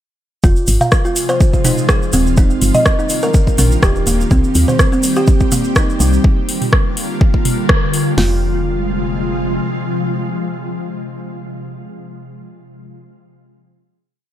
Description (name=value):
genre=afro house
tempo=124 BPM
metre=4/4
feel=swing 54% on 16ths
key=F dorian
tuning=A4 = 439 Hz
part: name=ethereal airy pad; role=sustained chords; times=0.8-11.4 s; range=C3 to G4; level=-21 LUFS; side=left 1 dB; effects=ensemble chorus, built-in reverb, sidechain pumping
part: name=kalimba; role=arpeggios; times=0.4-8.4 s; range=G3 to F5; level=-19 LUFS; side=equal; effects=sidechain pumping, tape echo
part: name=woody FM bass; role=bass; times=0.4-9.6 s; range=Eb1 to Eb2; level=-16 LUFS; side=equal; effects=tube saturation, sidechain pumping
part: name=deep house drum kit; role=drums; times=0.4-8.3 s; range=hi-hat, kick drum, snare drum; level=-14 LUFS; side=equal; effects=overdrive, small room ambience
part: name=tube shaker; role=percussion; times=0.4-6.2 s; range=none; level=-26 LUFS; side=right 5 dB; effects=none
part: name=afro-pop drum kit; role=drums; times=0.7-8.0 s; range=hi-hat, rim click, toms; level=-19 LUFS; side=right 1 dB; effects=small room ambience
room=digital ambience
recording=none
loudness=-12 LUFS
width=side -12 dB against mid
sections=0.4-8.2 drop; 8.2-12.1 final chord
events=drop 0.4-8.2; band accent 7.7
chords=0.4 Fm; 2.4 Ebadd9; 4.3 Cm; 6.2 Gm7; 8.2 Fm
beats=| 0.44 0.92 1.41 1.89 | 2.37 2.86 3.34 3.82 | 4.31 4.79 5.28 5.76 | 6.24 6.73 7.21 7.70 | 8.18 8.66 9.15 9.63 | 10.11 10.60 11.08